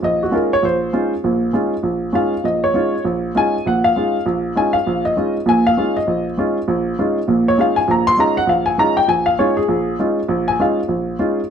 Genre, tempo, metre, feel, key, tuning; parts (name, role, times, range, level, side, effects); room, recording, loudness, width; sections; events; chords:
jazz; 199 BPM; 4/4; swing 62% on 8ths; A4 = 440 Hz
warm upright piano; solo; 0.0-11.4 s; Bb1 to C6; -15 LUFS; equal
moderate studio reverb, RT60 0.9 s; -15 LUFS; side -8 dB against mid
0.0-11.5 A section
0.0 Eb9sus4